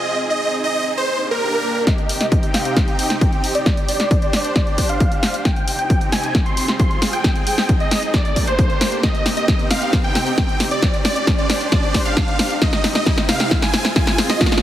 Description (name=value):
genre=uplifting trance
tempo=134 BPM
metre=4/4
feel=straight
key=C minor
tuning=A4 = 440 Hz
part: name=supersaw chords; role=melody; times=0.0-14.5 s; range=Bb4 to C6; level=-22 LUFS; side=right 1 dB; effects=sidechain pumping, low-pass filter, tape echo
part: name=supersaw pad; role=sustained chords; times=0.0-14.6 s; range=C3 to G5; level=-26 LUFS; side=equal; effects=sidechain pumping
part: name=electronic kick drum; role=drums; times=1.9-14.5 s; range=none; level=-18 LUFS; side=equal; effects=overdrive, studio reverb
part: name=techno drum kit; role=drums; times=1.9-14.6 s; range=hi-hat, snare drum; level=-20 LUFS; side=equal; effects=overdrive, low-pass filter on snare, studio reverb, sidechain pumping on hats, low-pass filter on hats
part: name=riser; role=sound effects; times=5.0-14.6 s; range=none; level=-28 LUFS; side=right 2 dB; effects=none
room=light reverb, digital ambience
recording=heavily compressed radio sound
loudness=-15 LUFS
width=side -12 dB against mid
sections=0.0-1.9 A section; 1.9-14.6 B section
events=build-up 1.9-14.6; drum fill 1.9-14.6; filter sweep on supersaw synth 1.9-14.6; riser 5.0-14.6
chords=0.1 Ab; 1.0 Gm; 1.9 Cm; 3.7 Gsus4; 5.5 Cm; 6.3 Fm; 7.2 Ab; 8.1 Gm; 9.0 Cm; 10.8 Gsus4; 12.6 Cm; 13.5 Fm